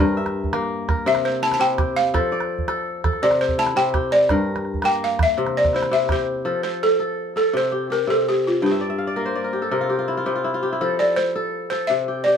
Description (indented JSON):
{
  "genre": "west african traditional, West African string and xylophone music",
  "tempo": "111 BPM (dotted quarters)",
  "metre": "12/8",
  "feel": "straight",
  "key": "F major",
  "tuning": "A4 = 440 Hz",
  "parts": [
    { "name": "balafon", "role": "melody", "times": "0.0-12.4 s", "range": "F4 to A5", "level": "-20 LUFS", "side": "equal", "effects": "none" },
    { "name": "kora", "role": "arpeggios", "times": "0.0-12.4 s", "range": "G2 to G5", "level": "-22 LUFS", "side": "left 2 dB", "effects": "none" },
    { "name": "calabash", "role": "percussion", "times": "0.2-6.2 s", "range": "none", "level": "-24 LUFS", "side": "right 3 dB", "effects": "none" }
  ],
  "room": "moderate studio reverb, RT60 0.7 s",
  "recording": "band playing live in one room",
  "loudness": "-19 LUFS",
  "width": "side -7 dB against mid",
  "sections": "0.0-6.5 A section; 6.5-12.4 B section",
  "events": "balafon solo 0.0-6.5; kora fill 8.6-10.8",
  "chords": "0.0 Gm; 1.1 C; 2.1 F; 3.2 C; 4.3 Gm; 5.4 C; 6.5 F; 7.5 C5; 8.6 Gm; 9.7 N.C.; 10.8 F",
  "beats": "0.53 1.06 1.60 | 2.14 2.68 3.21 3.75 | 4.29 4.83 5.37 5.91 | 6.46 7.00 7.54 8.09 | 8.63 9.17 9.72 10.26 | 10.81 11.35 11.90"
}